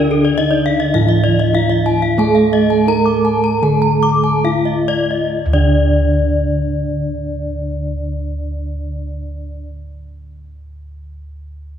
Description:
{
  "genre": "Balinese gamelan",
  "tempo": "64-114 BPM",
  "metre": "4/4",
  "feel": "straight",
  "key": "D pelog",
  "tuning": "A4 = 440 Hz",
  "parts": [
    { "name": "gamelan-type bronze metallophone", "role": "melody", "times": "0.0-9.7 s", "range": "D4 to Bb4-40c", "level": "-20 LUFS", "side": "right 1 dB", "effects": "slapback echo" },
    { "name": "gamelan-type bronze metallophone", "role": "accompaniment", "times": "0.0-9.7 s", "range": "D3 to A3-45c", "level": "-21 LUFS", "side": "right 2 dB", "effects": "none" },
    { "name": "gamelan-type bronze metallophone", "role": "arpeggios", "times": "0.0-9.7 s", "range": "Bb4-40c to D6", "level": "-24 LUFS", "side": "right 4 dB", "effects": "none" },
    { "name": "gamelan-type bossed gongs", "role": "bass", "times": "0.0-9.6 s", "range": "D2 to A4-45c", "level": "-19 LUFS", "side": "equal", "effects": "none" },
    { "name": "gamelan-type bronze metallophone", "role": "arpeggios", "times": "0.1-9.7 s", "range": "A4-45c to D6", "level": "-20 LUFS", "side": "left 4 dB", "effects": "none" }
  ],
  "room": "wet concert hall reverb, RT60 2.4 s",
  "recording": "heard from further back in the room",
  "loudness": "-13 LUFS",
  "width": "side -9 dB against mid",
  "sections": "0.0-5.3 A section; 5.3-11.8 B section",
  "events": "slowing down 0.0-5.3",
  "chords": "none"
}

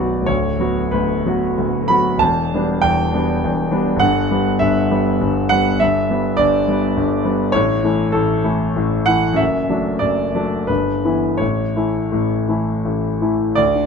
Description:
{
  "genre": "classical, romantic character piece for solo piano",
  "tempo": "81-105 BPM",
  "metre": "3/4",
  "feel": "rubato",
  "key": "unclear",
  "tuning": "A4 = 440 Hz",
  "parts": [
    { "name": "clear concert grand piano", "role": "solo", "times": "0.0-13.9 s", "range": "B0 to B5", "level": "-15 LUFS", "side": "equal", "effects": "none" }
  ],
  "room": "light reverb",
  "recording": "minimal, uncompressed stereo recording",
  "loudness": "-15 LUFS",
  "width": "side -5 dB against mid",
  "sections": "0.0-13.6 A section",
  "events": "none",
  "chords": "0.3 Bm/D; 2.2 Em7; 4.0 Em/G; 7.5 A; 9.4 D/F#; 10.7 Em/G; 11.4 A"
}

